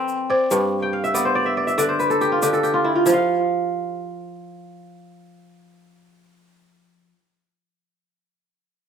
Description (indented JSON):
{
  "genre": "west african traditional, West African string and xylophone music",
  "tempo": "94 BPM (dotted quarters)",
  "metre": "12/8",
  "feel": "straight",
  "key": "unclear",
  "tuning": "A4 = 441 Hz",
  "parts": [
    { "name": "balafon", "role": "melody", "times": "0.0-7.1 s", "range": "A4 to C5", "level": "-23 LUFS", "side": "left 1 dB", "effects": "slapback echo" },
    { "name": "kora", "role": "arpeggios", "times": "0.0-7.2 s", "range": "G2 to G5", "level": "-19 LUFS", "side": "right 1 dB", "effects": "slapback echo" },
    { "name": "egg shaker", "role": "percussion", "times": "0.1-3.3 s", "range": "none", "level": "-30 LUFS", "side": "left 6 dB", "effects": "none" }
  ],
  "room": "little or no reverb",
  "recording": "recorded outdoors, with no room sound",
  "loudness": "-18 LUFS",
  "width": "side -7 dB against mid",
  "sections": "0.0-3.1 A section; 3.1-5.6 B section",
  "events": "kora fill 0.8-3.1",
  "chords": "0.0 F; 0.5 G; 3.1 N.C."
}